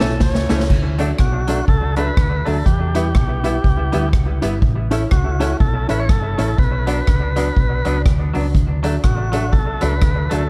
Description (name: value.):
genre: ska.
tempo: 122 BPM.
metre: 4/4.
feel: swing 59% on 8ths.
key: D major.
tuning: A4 = 439 Hz.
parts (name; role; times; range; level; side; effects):
bright alto saxophone; melody; 0.0-0.7 s; A4 to C#5; -31 LUFS; equal; analog delay, plate reverb.
semi-hollow electric guitar; accompaniment; 0.0-10.4 s; E3 to E4; -30 LUFS; equal; analog delay, plate reverb.
honky-tonk upright piano; stabs; 0.0-10.4 s; C#4 to E5; -27 LUFS; equal; analog delay, plate reverb.
hollow-body short-scale fingered electric bass; bass; 0.0-10.5 s; G1 to E2; -23 LUFS; equal; none.
street-band drum kit; drums; 0.0-10.4 s; crash cymbal, hi-hat, kick drum, rim click, snare drum; -21 LUFS; equal; none.
tonewheel organ; melody; 1.2-10.5 s; F#4 to C#5; -28 LUFS; equal; overdrive, analog delay, plate reverb.
room: studio reverb.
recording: dark, warm production.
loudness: -18 LUFS.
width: mono.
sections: 0.7-10.5 A section.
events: drum fill 0.0-0.7.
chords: 0.0 A; 0.7 D; 2.7 Em; 4.6 A; 6.6 Bm; 8.5 D.